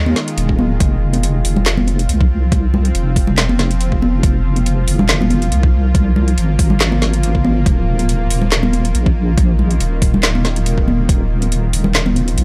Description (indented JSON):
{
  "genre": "deep dubstep",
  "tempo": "140 BPM",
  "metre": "4/4",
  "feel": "swing 54% on 16ths, half-time",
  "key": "F minor",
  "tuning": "A4 = 438 Hz",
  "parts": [
    { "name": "bowed-like drone", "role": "sustained chords", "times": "0.0-12.4 s", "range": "Eb3 to F4", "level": "-27 LUFS", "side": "equal", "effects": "built-in reverb" },
    { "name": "deep soft wobble bass", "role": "bass", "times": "0.0-12.4 s", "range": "Eb1 to Eb2", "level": "-18 LUFS", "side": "equal", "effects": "chorus" },
    { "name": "congas", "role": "percussion", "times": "0.1-12.3 s", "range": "none", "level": "-22 LUFS", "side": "equal", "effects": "dub echo" },
    { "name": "garage drum kit", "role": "drums", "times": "0.2-12.4 s", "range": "handclaps, hi-hat, snare drum", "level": "-22 LUFS", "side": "equal", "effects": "overdrive" },
    { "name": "electronic kick drum", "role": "drums", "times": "0.5-11.2 s", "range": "none", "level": "-17 LUFS", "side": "equal", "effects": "overdrive" }
  ],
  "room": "little or no reverb",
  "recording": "dry, gritty hardware recording",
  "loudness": "-15 LUFS",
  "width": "mono",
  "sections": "0.0-12.4 A section",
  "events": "none",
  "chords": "0.0 Ebsus2; 0.8 Fm; 7.7 Ebsus2"
}